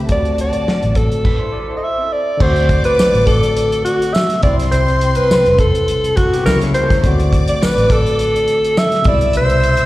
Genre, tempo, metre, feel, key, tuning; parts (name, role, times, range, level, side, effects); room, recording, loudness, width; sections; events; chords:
lush 1970s-style soul; 104 BPM; 4/4; swing 54% on 16ths; A4 = 439 Hz
warm symphonic violin section; second line; 0.0-9.9 s; C4 to E6; -26 LUFS; equal; slapback echo
barky tine electric piano; accompaniment; 0.0-9.9 s; B2 to F#4; -21 LUFS; left 2 dB; overdrive, slapback echo
vintage muted fingered electric bass; bass; 0.0-9.8 s; E1 to D2; -17 LUFS; equal
warm alto saxophone; melody; 0.1-9.9 s; F#4 to E5; -16 LUFS; equal; slapback echo
warm soul drum kit; drums; 0.1-9.9 s; crash cymbal, hi-hat, kick drum, snare drum; -18 LUFS; equal
electric guitar through a small old amp; riff; 1.2-2.4, 6.3-7.2 s; B3 to D5; -28 LUFS; right 1 dB; spring reverb, slapback echo
tambourine; percussion; 3.0-8.9 s; -32 LUFS; right 2 dB
light reverb, small room reverb; live gig heard through the venue's PA, recital hall reverb; -12 LUFS; side -17 dB against mid
0.0-2.4 A section; 2.4-9.9 B section
0.1 D7; 4.4 Am7; 6.5 C#dim7; 7.0 D7; 9.1 Cmaj9